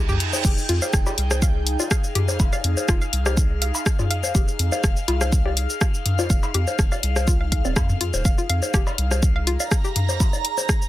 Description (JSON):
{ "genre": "minimal techno", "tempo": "123 BPM", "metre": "4/4", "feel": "swing 53% on 16ths", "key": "F minor", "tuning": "A4 = 440 Hz", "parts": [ { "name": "hollow square pluck", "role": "riff", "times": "0.0-9.9 s", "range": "C4 to F5", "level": "-30 LUFS", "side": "left 2 dB", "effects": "chorus, sidechain pumping, dub echo" }, { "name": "round analog bass", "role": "bass", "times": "0.0-9.6 s", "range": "Eb1 to F2", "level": "-24 LUFS", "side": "equal", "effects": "sidechain pumping" }, { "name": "airy breathy pad", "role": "texture", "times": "0.0-10.9 s", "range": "Eb4 to Bb5", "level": "-30 LUFS", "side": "left 1 dB", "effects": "chorus, phaser, sidechain pumping" }, { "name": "house drum kit", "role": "drums", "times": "0.1-10.9 s", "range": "crash cymbal, hi-hat, rim click, shaker", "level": "-26 LUFS", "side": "left 1 dB", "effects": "overdrive" }, { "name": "electronic toms, bongos, cowbell and woodblock", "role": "percussion", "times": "0.1-10.7 s", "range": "none", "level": "-26 LUFS", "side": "left 1 dB", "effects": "overdrive" }, { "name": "electronic kick drum", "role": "drums", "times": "0.4-10.8 s", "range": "none", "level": "-20 LUFS", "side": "equal", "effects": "overdrive" } ], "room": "little or no reverb", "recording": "none", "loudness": "-19 LUFS", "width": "side -15 dB against mid", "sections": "0.0-10.9 A section", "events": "none", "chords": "0.0 Fm7" }